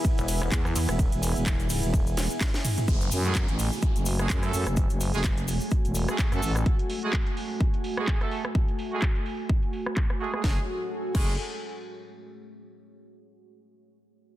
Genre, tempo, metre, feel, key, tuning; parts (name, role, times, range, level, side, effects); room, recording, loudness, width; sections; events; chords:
bass house; 127 BPM; 4/4; swing 56% on 16ths; F# minor; A4 = 438 Hz
deep dark ambient pad; sustained chords; 0.0-10.7 s; A3 to E5; -38 LUFS; equal; chorus, built-in reverb, sidechain pumping
electronic kick drum; drums; 0.0-11.3 s; -25 LUFS; equal
house drum kit; drums; 0.0-11.3 s; crash cymbal, handclaps, hi-hat, ride cymbal, rim click, snare drum, toms; -33 LUFS; equal; low-pass filter on hats, low-pass filter on cymbals, soft clipping on snare, low-pass filter on snare, low-pass filter on toms, low-pass filter on room
cabasa; percussion; 0.0-6.6 s; -38 LUFS; left 4 dB
airy breathy pad; texture; 0.0-12.3 s; A3 to G#5; -35 LUFS; right 1 dB; chorus, sidechain pumping
pulsing pluck wobble bass; bass; 0.2-2.3 s; E1 to E2; -26 LUFS; equal; chorus, sidechain pumping
growling FM bass; bass; 0.5-6.6, 10.4-11.4 s; E1 to F#2; -28 LUFS; equal; sidechain pumping
downlifter; sound effects; 2.9-6.7 s; -40 LUFS; right 1 dB
brilliant horn section; stabs; 3.2-11.3 s; G#3 to A4; -34 LUFS; right 4 dB; sidechain pumping, low-pass filter, tape echo
digital ambience; dense, heavily limited modern master; -24 LUFS; side -14 dB against mid
0.0-2.9 A section; 2.9-10.4 B section; 10.4-12.3 C section
drop 0.0-2.9; drum fill 2.2-2.9
0.0 E; 2.9 F#madd9